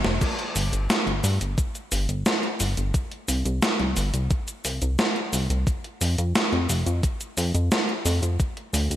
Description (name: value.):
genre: synthwave.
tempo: 88 BPM.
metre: 4/4.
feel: straight.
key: unclear.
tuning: A4 = 439 Hz.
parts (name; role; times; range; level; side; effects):
chorused synth bass; bass; 0.0-9.0 s; F1 to G2; -23 LUFS; equal; sidechain pumping.
gated 80s digital drum machine; drums; 0.0-9.0 s; crash cymbal, hi-hat, shaker, snare drum; -25 LUFS; equal; gated reverb, gated reverb snare, overdrive.
electronic kick drum; drums; 0.2-8.5 s; none; -24 LUFS; equal; overdrive.
room: light reverb.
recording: bright 1980s-style digital production.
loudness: -22 LUFS.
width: side -12 dB against mid.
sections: 0.2-9.0 A section.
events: drum fill 0.0.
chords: none.